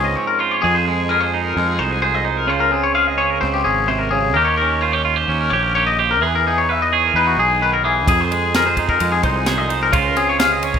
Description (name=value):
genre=math rock and midwest emo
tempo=129 BPM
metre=4/4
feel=straight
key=unclear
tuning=A4 = 440 Hz
part: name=twangy electric guitar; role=accompaniment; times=0.0-10.8 s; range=F2 to B4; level=-19 LUFS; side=right 8 dB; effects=spring reverb
part: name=twangy electric guitar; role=arpeggios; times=0.0-10.8 s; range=Gb4 to F5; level=-18 LUFS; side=left 7 dB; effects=slapback echo
part: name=fuzz fingered electric bass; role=bass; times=0.0-10.8 s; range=Ab1 to F2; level=-23 LUFS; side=equal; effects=overdrive
part: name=crisp fusion drum kit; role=drums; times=8.1-10.8 s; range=kick drum, ride cymbal, snare drum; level=-23 LUFS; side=equal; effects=none
room=light reverb, studio ambience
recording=rough home demo mix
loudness=-15 LUFS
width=side -7 dB against mid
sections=0.6-10.8 A section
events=none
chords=0.0 Dbmaj7; 0.6 Fm7; 2.5 Dbmaj7; 4.3 Eb7; 6.2 Emaj7; 8.1 Fm7; 9.9 Dbmaj7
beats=0.17 | 0.63 1.09 1.56 2.02 | 2.49 2.95 3.42 3.88 | 4.35 4.81 5.28 5.74 | 6.21 6.67 7.14 7.61 | 8.07 8.54 9.00 9.46 | 9.93 10.39